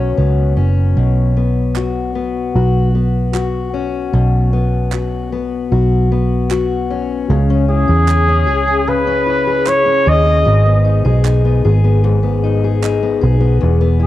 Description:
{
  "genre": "acoustic pop",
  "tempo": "76 BPM",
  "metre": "4/4",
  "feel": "straight",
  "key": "unclear",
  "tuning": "A4 = 439 Hz",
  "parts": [
    { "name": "mellow trumpet", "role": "melody", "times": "0.0-0.2, 7.7-14.1 s", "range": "G#4 to D#5", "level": "-15 LUFS", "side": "right 1 dB", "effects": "cassette tape, analog delay" },
    { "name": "fingerpicked steel-string acoustic guitar", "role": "accompaniment", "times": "0.0-14.1 s", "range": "E2 to G#4", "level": "-18 LUFS", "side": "left 6 dB", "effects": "cassette tape" },
    { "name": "vintage muted fingered electric bass", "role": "bass", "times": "0.0-14.1 s", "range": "E1 to E2", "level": "-14 LUFS", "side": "right 1 dB", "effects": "tube saturation" },
    { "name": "group handclap", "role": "percussion", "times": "1.8-13.0 s", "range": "none", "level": "-29 LUFS", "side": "right 8 dB", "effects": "none" }
  ],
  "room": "light reverb, small room reverb",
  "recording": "home recording on cassette",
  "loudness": "-12 LUFS",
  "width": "side -14 dB against mid",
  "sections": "1.0-7.3 A section; 7.3-14.1 B section",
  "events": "none",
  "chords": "0.0 Bsus2; 7.3 C#m; 10.5 G#m"
}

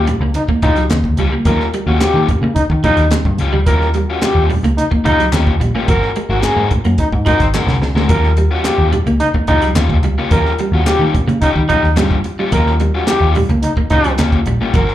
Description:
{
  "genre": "funk",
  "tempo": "108 BPM",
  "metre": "4/4",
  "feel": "straight",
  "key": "Eb mixolydian",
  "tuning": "A4 = 438 Hz",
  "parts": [
    { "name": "crunchy overdriven guitar", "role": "accompaniment", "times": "0.0-14.9 s", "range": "G3 to Bb4", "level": "-21 LUFS", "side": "left 7 dB", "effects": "plate reverb, slapback echo" },
    { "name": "vintage muted picked electric bass", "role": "bass", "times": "0.0-14.9 s", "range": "Ab1 to Eb3", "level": "-16 LUFS", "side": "equal", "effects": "none" },
    { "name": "clean electric guitar", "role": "riff", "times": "0.1-14.8 s", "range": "Gb3 to Bb3", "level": "-22 LUFS", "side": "right 3 dB", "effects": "ensemble chorus, slapback echo" },
    { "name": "compact cocktail drum kit", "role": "drums", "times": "0.1-14.9 s", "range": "hi-hat, kick drum, snare drum", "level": "-19 LUFS", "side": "equal", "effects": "none" },
    { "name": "congas", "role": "percussion", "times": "0.1-14.9 s", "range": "none", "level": "-24 LUFS", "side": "right 3 dB", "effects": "none" },
    { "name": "breathy trombone", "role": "second line", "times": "0.4-14.9 s", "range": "Eb4 to Bb4", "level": "-18 LUFS", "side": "right 1 dB", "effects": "plate reverb, slapback echo" },
    { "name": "group handclap", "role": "percussion", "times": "0.9-14.3 s", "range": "none", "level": "-27 LUFS", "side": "left 6 dB", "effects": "slapback echo" }
  ],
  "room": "light reverb",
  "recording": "live gig heard through the venue's PA, club reverb",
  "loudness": "-12 LUFS",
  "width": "side -13 dB against mid",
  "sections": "0.0-14.9 A section",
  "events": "drum fill 7.5-8.1",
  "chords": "0.0 Eb9; 5.9 Ab9; 8.1 Eb9"
}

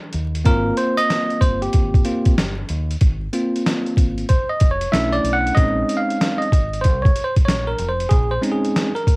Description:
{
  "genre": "hip hop, jazz-hop",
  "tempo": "94 BPM",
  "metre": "4/4",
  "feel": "swing 66% on 16ths",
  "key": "unclear",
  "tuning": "A4 = 439 Hz",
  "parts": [
    { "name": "deep dub fingered electric bass", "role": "bass", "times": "0.1-9.2 s", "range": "F1 to Eb2", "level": "-24 LUFS", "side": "equal", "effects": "none" },
    { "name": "boom bap sampler-style drum kit", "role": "drums", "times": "0.1-9.2 s", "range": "hi-hat, kick drum, snare drum", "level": "-18 LUFS", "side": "equal", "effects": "cassette tape" },
    { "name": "bell-like tine electric piano", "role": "accompaniment", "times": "0.4-9.2 s", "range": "Ab3 to F#5", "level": "-20 LUFS", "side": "equal", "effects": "cassette tape" }
  ],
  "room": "light reverb",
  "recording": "home recording on cassette, vinyl crackle",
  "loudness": "-16 LUFS",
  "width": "side -27 dB against mid",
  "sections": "0.0-9.2 A section",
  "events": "tine electric piano solo 0.0-9.2",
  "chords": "0.5 Ab69; 4.9 Bm11; 5.6 Bbm11"
}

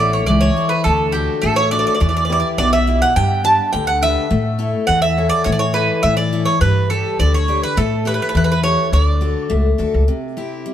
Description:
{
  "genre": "greek folk, Greek bouzouki band",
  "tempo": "104 BPM",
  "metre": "2/4",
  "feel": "straight",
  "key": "D major",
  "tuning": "A4 = 440 Hz",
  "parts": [
    { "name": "Greek bouzouki", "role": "melody", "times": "0.0-9.8 s", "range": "G4 to A5", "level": "-17 LUFS", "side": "right 2 dB", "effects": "none" },
    { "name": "picked steel-string acoustic guitar", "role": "accompaniment", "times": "0.0-10.7 s", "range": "B2 to D5", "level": "-20 LUFS", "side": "left 4 dB", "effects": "none" },
    { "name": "upright bass", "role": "bass", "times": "0.0-10.1 s", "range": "A1 to A2", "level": "-18 LUFS", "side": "equal", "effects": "none" }
  ],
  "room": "moderate plate reverb, RT60 2.5 s",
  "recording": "heard from further back in the room",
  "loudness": "-14 LUFS",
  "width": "side -10 dB against mid",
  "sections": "0.9-10.1 A section",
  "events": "none",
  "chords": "0.0 A; 0.9 D; 2.0 Em; 3.2 G; 4.3 A; 6.6 G; 7.8 A7; 8.9 D; 10.1 C"
}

